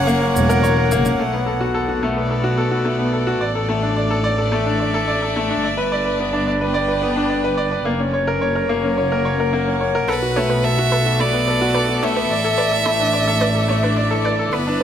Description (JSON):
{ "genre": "piano and strings electronica", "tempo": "108 BPM", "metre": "4/4", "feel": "straight", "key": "B minor", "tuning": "A4 = 439 Hz", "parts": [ { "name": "bright violin", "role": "melody", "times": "0.0-0.6, 10.1-14.8 s", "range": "B4 to F#5", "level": "-21 LUFS", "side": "right 2 dB", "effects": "tape echo" }, { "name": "rich string quartet", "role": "sustained chords", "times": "0.0-14.8 s", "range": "A2 to G5", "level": "-26 LUFS", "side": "left 1 dB", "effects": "none" }, { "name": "bright upright piano", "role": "riff", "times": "0.0-14.8 s", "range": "A3 to D5", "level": "-19 LUFS", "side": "left 1 dB", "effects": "tape echo" }, { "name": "shaker", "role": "drums", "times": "0.1-1.2 s", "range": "none", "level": "-35 LUFS", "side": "right 2 dB", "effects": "low-pass filter on perc, small room ambience" }, { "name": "rich chamber double bass section", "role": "bass", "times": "0.4-14.8 s", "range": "E1 to B1", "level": "-23 LUFS", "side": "equal", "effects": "tube saturation" }, { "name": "wide unison pluck", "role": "arpeggios", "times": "10.1-14.8 s", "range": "B4 to B5", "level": "-28 LUFS", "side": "right 3 dB", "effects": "tape echo" } ], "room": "moderate huge ambient reverb, RT60 5.2 s", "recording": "none", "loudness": "-16 LUFS", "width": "side -9 dB against mid", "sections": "0.0-1.2 A section; 1.2-14.8 B section", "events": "none", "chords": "0.0 F#; 1.2 Bm7; 3.4 Asus4; 5.6 G; 7.9 F#; 10.1 Bm7; 12.3 Asus4" }